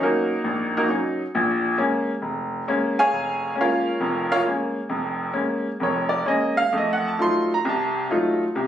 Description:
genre	solo jazz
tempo	134 BPM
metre	4/4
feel	swing 68% on 8ths, rubato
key	Bb minor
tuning	A4 = 439 Hz
part	bright upright piano	solo	0.0-8.7 s	F1 to C6	-20 LUFS	equal	none
room	light reverb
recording	recorded on a phone in the room, club reverb, nothing above 10.5 kHz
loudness	-20 LUFS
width	side -10 dB against mid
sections	0.0-8.7 A section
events	upright piano solo 0.0-8.7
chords	0.0 Ebm7; 1.3 Bbm7; 6.7 F7b9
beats	0.45 0.90 | 1.34 1.79 2.23 2.67 | 3.12 3.56 4.00 4.45 | 4.89 5.34 5.79 6.26 | 6.73 7.19 7.64 8.10 | 8.55

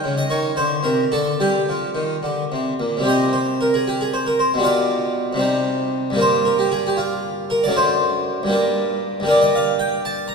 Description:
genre	classical, baroque-style suite movement for harpsichord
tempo	71-80 BPM (dotted quarters)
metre	6/8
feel	rubato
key	G minor, C minor from 3.1 s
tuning	A4 = 440 Hz
part	harpsichord	solo	0.0-10.3 s	F#2 to Bb5	-17 LUFS	equal	none
room	wet church reverb, RT60 2.6 s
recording	recorded in a church or concert hall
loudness	-17 LUFS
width	side -4 dB against mid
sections	0.0-3.1 A section; 3.1-10.3 A section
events	none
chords	0.0 Eb7; 0.6 Bbmaj9; 1.4 Gm; 3.1 C5; 4.6 G7/B; 5.4 Cm; 6.2 Gm; 7.8 D7/F#; 8.5 Gm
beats	0.57 | 1.39 2.23 | 3.06 3.85 | 4.64 5.43 | 6.20 6.98 | 7.76 8.53 | 9.29 10.05

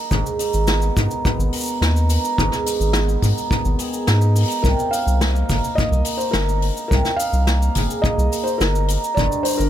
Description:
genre	folktronica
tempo	106 BPM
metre	4/4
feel	straight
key	unclear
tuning	A4 = 440 Hz
part	cimbalom	arpeggios	0.0-9.7 s	G2 to Bb4	-23 LUFS	right 3 dB	none
part	round analog bass	bass	0.1-9.7 s	G1 to Ab2	-18 LUFS	equal	none
part	kick drum	drums	0.1-9.3 s	none	-22 LUFS	equal	none
part	soft brush drum kit	drums	0.1-9.7 s	cabasa, hi-hat, snare drum	-26 LUFS	left 2 dB	none
part	felt-muted upright piano	melody	4.6-9.7 s	Bb4 to F5	-24 LUFS	left 1 dB	vintage 12-bit sampler grit, ping-pong delay
room	little or no reverb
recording	none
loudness	-17 LUFS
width	side -11 dB against mid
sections	0.0-9.7 A section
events	none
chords	0.1 Abmadd9; 4.6 Cm7; 9.2 Gm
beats	| 0.11 0.68 1.24 1.81 | 2.38 2.94 3.51 4.07 | 4.64 5.21 5.77 6.34 | 6.90 7.47 8.04 8.60 | 9.17

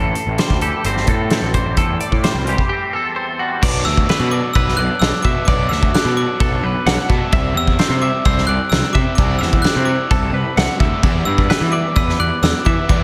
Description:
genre	math rock and midwest emo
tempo	130 BPM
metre	4/4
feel	straight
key	unclear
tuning	A4 = 440 Hz
part	twangy electric guitar	accompaniment	0.0-3.6 s	E2 to A4	-26 LUFS	equal	ensemble chorus
part	twelve-string electric guitar	arpeggios	0.0-13.0 s	F#4 to F#5	-26 LUFS	equal	none
part	fuzz picked electric bass	bass	0.0-13.0 s	G1 to E3	-22 LUFS	equal	overdrive
part	loose indie drum kit	drums	0.2-13.0 s	crash cymbal, hi-hat, kick drum, snare drum	-20 LUFS	equal	none
part	overdriven electric guitar	riff	3.6-13.0 s	B2 to E4	-28 LUFS	equal	spring reverb, slapback echo
part	glockenspiel with brass mallets	melody	3.9-13.0 s	D6 to F#6	-25 LUFS	equal	none
room	moderate lush hall reverb, RT60 1.9 s, small room ambience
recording	big arena sound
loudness	-17 LUFS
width	mono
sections	0.0-3.6 A section; 3.6-13.0 B section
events	break 2.7-3.6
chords	0.0 Am7; 3.6 Bm; 7.3 Cadd9; 11.0 Em7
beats	0.40 0.86 1.32 | 1.78 2.25 2.71 3.17 | 3.63 4.09 4.55 5.02 | 5.48 5.94 6.40 6.86 | 7.33 7.79 8.25 8.72 | 9.18 9.64 10.11 10.57 | 11.04 11.50 11.96 12.43 | 12.89

